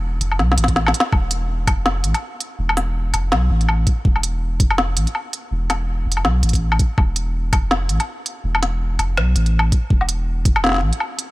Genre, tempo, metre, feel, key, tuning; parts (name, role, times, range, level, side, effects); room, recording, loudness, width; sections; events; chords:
half-time drum and bass; 164 BPM; 4/4; swing 58% on 16ths, half-time; A4 = 439 Hz
saturated sub bass; bass; 0.0-10.9 s; E1 to B1; -19 LUFS; equal
organic electronic drum kit; drums; 0.2-11.3 s; hi-hat, snare drum, woodblock; -21 LUFS; left 1 dB
electronic kick drum; drums; 0.7-10.5 s; -17 LUFS; equal
digital ambience; -16 LUFS; side -19 dB against mid
0.0-11.3 A section
drum fill 0.4-1.1; kick drops out 0.8-1.1